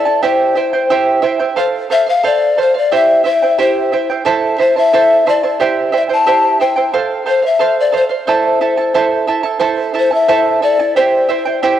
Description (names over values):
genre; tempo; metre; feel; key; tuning
andean folk, Andean ensemble; 90 BPM; 2/4; straight; A minor; A4 = 440 Hz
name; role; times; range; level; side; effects
mellow hollow polished pan flute; melody; 0.0-11.8 s; C5 to A5; -14 LUFS; left 4 dB; cassette tape
charango; accompaniment; 0.0-11.8 s; E4 to A5; -14 LUFS; right 5 dB; cassette tape
room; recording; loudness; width
moderate lush hall reverb, RT60 2.8 s; home recording on cassette; -11 LUFS; side -11 dB against mid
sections
0.0-9.6 A section; 9.6-11.8 A section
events
none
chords
0.2 C; 1.6 F; 2.9 C; 4.3 Am; 5.6 C; 6.9 F; 8.3 Am; 10.9 C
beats
| 0.23 0.90 | 1.57 2.24 | 2.91 3.58 | 4.25 4.92 | 5.59 6.26 | 6.93 7.60 | 8.27 8.94 | 9.61 10.28 | 10.95 11.62